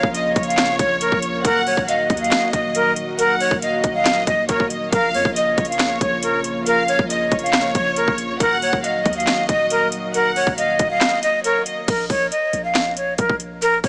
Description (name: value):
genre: hip hop, trap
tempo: 138 BPM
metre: 4/4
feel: half-time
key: unclear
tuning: A4 = 439 Hz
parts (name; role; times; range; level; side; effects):
- breathy hollow jazz flute; melody; 0.0-13.9 s; Bb4 to F5; -21 LUFS; equal; none
- warm studio violin section; second line; 0.0-11.9 s; Db5 to Gb5; -27 LUFS; equal; tape echo
- warm analog pad; sustained chords; 0.0-11.8 s; Db3 to Gb4; -31 LUFS; equal; chorus
- warm 808-style bass; bass; 0.0-13.9 s; Eb1 to F2; -36 LUFS; equal; none
- trap drum kit; drums; 0.0-13.9 s; crash cymbal, handclaps, hi-hat, kick drum, snare drum; -24 LUFS; equal; overdrive
room: light reverb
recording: small speaker sound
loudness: -19 LUFS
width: mono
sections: 0.0-11.9 A section; 11.9-13.9 B section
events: kick muted 11.0-11.9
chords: 0.0 Bbm; 1.4 Ebm; 4.9 Bbm; 8.4 Ebm; 11.9 N.C.